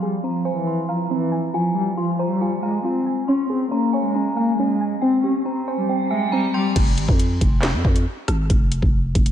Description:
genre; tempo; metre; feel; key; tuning
hip hop, drill; 138 BPM; 4/4; half-time; F harmonic minor; A4 = 440 Hz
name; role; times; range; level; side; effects
warm cello; melody; 0.0-6.7 s; E3 to Db4; -22 LUFS; left 1 dB; low-pass filter, tape echo
metallic FM bell; second line; 0.0-6.7 s; G5 to C6; -28 LUFS; right 1 dB; chorus, phaser, tape echo
soft round pluck; accompaniment; 0.0-6.8 s; C4 to Ab5; -25 LUFS; equal; chorus, low-pass filter
growling 808-style bass; bass; 6.8-9.3 s; F1 to F2; -21 LUFS; equal; none
drill drum kit; drums; 6.8-9.3 s; crash cymbal, handclaps, hi-hat, kick drum, rim click, snare drum; -19 LUFS; equal; vintage 12-bit sampler grit
room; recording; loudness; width
moderate lush hall reverb, RT60 1.9 s; dreamy mix soaked in reverb, low-pass filter; -18 LUFS; side -10 dB against mid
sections
0.0-6.8 A section; 6.8-9.3 B section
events
filter sweep 0.0-6.8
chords
0.0 Fm; 3.3 Db; 5.0 C; 6.8 Fm

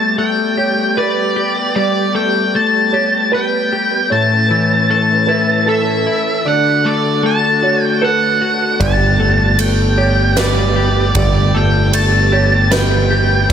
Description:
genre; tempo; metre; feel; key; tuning
post-rock; 77 BPM; 3/4; straight; G lydian; A4 = 440 Hz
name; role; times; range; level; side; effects
octave-fuzz lead guitar; melody; 0.0-13.5 s; D5 to A5; -16 LUFS; equal; distortion, analog delay
rich studio string section; sustained chords; 0.0-13.5 s; D3 to F#4; -23 LUFS; right 3 dB; stereo widening
felt-muted upright piano; arpeggios; 0.0-13.5 s; A4 to D5; -23 LUFS; right 6 dB; analog delay
twelve-string electric guitar; arpeggios; 0.0-13.5 s; A2 to B4; -18 LUFS; left 3 dB; analog delay
growling picked electric bass; bass; 8.8-13.5 s; G1; -15 LUFS; equal; overdrive
huge arena drum kit; drums; 8.8-13.5 s; kick drum, ride cymbal, snare drum; -20 LUFS; right 1 dB; none
room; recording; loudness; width
light reverb, studio ambience; none; -12 LUFS; side -8 dB against mid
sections
0.0-13.5 A section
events
none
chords
0.0 Gadd9; 4.1 A; 6.5 D; 8.8 Gadd9

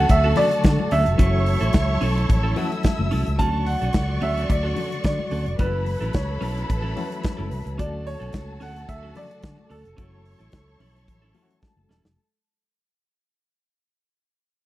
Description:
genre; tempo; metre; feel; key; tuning
disco; 109 BPM; 4/4; straight; unclear; A4 = 440 Hz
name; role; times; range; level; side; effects
clear concert grand piano; melody; 0.0-10.8 s; A4 to A5; -26 LUFS; right 1 dB; none
dark studio string section; second line; 0.0-12.2 s; A4 to E6; -32 LUFS; right 2 dB; none
clean electric guitar; accompaniment; 0.0-12.1 s; C#4 to A4; -33 LUFS; right 5 dB; none
overdriven reed electric piano; accompaniment; 0.0-12.2 s; C#3 to E5; -32 LUFS; left 5 dB; fast tremolo
clear studio string section; sustained chords; 0.0-12.2 s; F#3 to A4; -34 LUFS; left 1 dB; none
fingered electric bass; bass; 0.0-12.2 s; E1 to D3; -24 LUFS; equal; none
modern studio drum kit; drums; 0.1-12.2 s; hi-hat, kick drum, snare drum; -21 LUFS; equal; none
congas; percussion; 0.4-12.2 s; none; -33 LUFS; left 6 dB; none
room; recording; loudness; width
little or no reverb; dry, close 1970s-style studio recording; -20 LUFS; side -16 dB against mid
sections
0.0-12.2 A section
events
fade-out 0.0-12.2; reed electric piano fill 6.7-7.8; drum fill 11.6-12.2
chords
0.0 Dmaj7; 1.2 F#m7; 3.4 Dmaj7; 5.6 F#m7; 7.8 Dmaj7; 10.0 F#m7

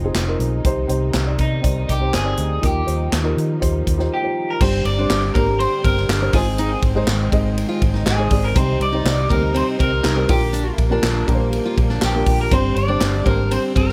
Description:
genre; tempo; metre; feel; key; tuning
piano-driven pop; 121 BPM; 4/4; straight; C minor; A4 = 440 Hz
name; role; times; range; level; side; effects
dark upright piano; accompaniment; 0.0-13.9 s; G2 to G5; -25 LUFS; equal; none
warm studio string section; sustained chords; 0.0-13.9 s; C3 to Eb4; -34 LUFS; equal; none
vintage muted fingered electric bass; bass; 0.0-13.9 s; F1 to Eb3; -24 LUFS; equal; none
natural country drum kit; drums; 0.1-13.9 s; crash cymbal, handclaps, hi-hat, kick drum, ride cymbal, snare drum; -24 LUFS; equal; none
electric guitar at the edge of break-up; melody; 1.4-13.9 s; Eb4 to D5; -26 LUFS; equal; phaser
fingerpicked steel-string acoustic guitar; riff; 4.6-13.9 s; Bb3 to F4; -29 LUFS; equal; none
room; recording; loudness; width
little or no reverb; none; -19 LUFS; mono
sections
0.0-4.6 A section; 4.6-13.9 B section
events
none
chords
0.0 Fm7; 0.7 Cm; 2.6 Ebadd9; 4.6 Gsus4; 6.3 Ab; 8.6 Cm; 10.3 Bb6; 12.5 Gsus4

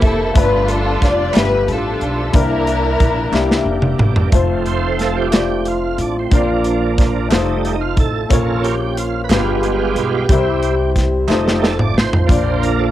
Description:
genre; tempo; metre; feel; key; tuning
slow gospel; 60 BPM (dotted quarters); 6/8; straight; F major; A4 = 438 Hz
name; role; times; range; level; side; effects
warm studio string section; melody; 0.0-3.7 s; Bb3 to D5; -18 LUFS; left 1 dB; cassette tape
warm baby grand piano; accompaniment; 0.0-12.9 s; G2 to E5; -21 LUFS; left 6 dB; none
bright tonewheel organ; sustained chords; 0.0-12.9 s; E3 to E5; -22 LUFS; right 7 dB; overdrive, chorus vibrato, slow rotary speaker
upright bass; bass; 0.0-12.9 s; F1 to C2; -22 LUFS; equal; none
modern studio drum kit; drums; 0.0-12.8 s; hi-hat, kick drum, snare drum, toms; -16 LUFS; equal; cassette tape
group handclap; percussion; 1.3-11.6 s; none; -28 LUFS; right 9 dB; none
mellow French horn section; sustained chords; 4.3-12.9 s; F3 to G4; -24 LUFS; equal; none
room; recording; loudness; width
moderate small room reverb, RT60 0.6 s; home recording on cassette; -14 LUFS; side -13 dB against mid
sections
0.0-4.3 A section; 4.3-12.9 B section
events
drum fill 3.3-4.3, 11.3-12.3; tonewheel organ solo 4.3-12.9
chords
0.4 G13; 2.3 C9; 4.3 F; 6.3 Bb; 7.3 F7; 8.3 Bbm; 9.3 G7b9; 10.3 C; 11.3 F7; 12.3 Bb

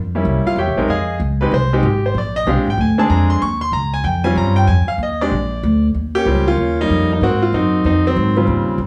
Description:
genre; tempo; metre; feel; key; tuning
jazz piano trio; 190 BPM; 4/4; swing 63% on 8ths; Eb mixolydian; A4 = 438 Hz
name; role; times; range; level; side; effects
upright bass; bass; 0.0-8.9 s; Ab1 to Ab2; -20 LUFS; equal; none
clear grand piano; melody; 0.2-8.8 s; Db3 to Db6; -19 LUFS; equal; none
room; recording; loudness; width
light reverb; studio reverb; -17 LUFS; mono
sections
0.0-5.9 A section; 5.9-8.9 B section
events
grand piano solo 0.0-5.9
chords
0.3 C7b9; 0.9 Fm7; 2.2 Bb13; 3.4 Eb13; 4.7 Fm7; 5.3 Bb; 5.9 Eb9; 7.2 Ab13

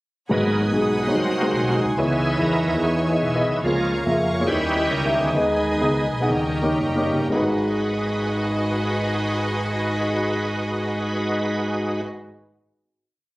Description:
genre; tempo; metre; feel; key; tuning
uptempo gospel; 108-145 BPM; 4/4; swing 66% on 8ths; G# minor; A4 = 440 Hz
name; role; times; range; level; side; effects
dark baby grand piano; accompaniment; 0.3-12.0 s; G#1 to F#5; -24 LUFS; left 1 dB; none
bright tonewheel organ; sustained chords; 0.3-12.0 s; C#3 to C#5; -23 LUFS; right 1 dB; fast rotary speaker, overdrive, chorus vibrato
clear studio string section; sustained chords; 0.3-12.0 s; F#4 to D#6; -29 LUFS; equal; none
fingered electric bass; bass; 0.3-12.0 s; F#1 to E#2; -28 LUFS; equal; none
room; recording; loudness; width
moderate large studio reverb, RT60 0.9 s; recorded on a phone in the room, club reverb; -19 LUFS; side -19 dB against mid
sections
0.3-7.3 breakdown; 7.3-11.7 final chord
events
tonewheel organ solo 0.3-7.3; slowing down 3.6-7.3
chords
0.3 G#m7; 1.1 G#7/B#; 2.0 C#m7; 3.6 A#m7/C#; 4.5 D#7b9; 5.3 G#m/D#; 6.3 D#7; 7.3 G#m7

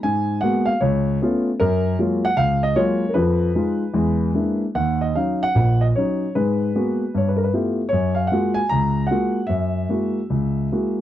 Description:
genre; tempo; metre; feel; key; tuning
solo jazz; 152 BPM; 4/4; swing 66% on 8ths, rubato; unclear; A4 = 439 Hz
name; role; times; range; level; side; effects
warm concert grand piano; solo; 0.0-11.0 s; Bb1 to Bb5; -18 LUFS; equal; none
room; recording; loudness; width
little or no reverb; dry, close 1970s-style studio recording; -18 LUFS; side -12 dB against mid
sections
0.0-4.8 A section; 4.8-11.0 B section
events
none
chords
0.0 Abm9; 0.8 Dbaug7; 1.6 Gbmaj9; 3.2 Fm7b5; 3.9 E7#11; 4.8 Ebm7; 6.4 Abm9; 7.1 G13; 7.9 Gbmaj9; 9.5 Gb9

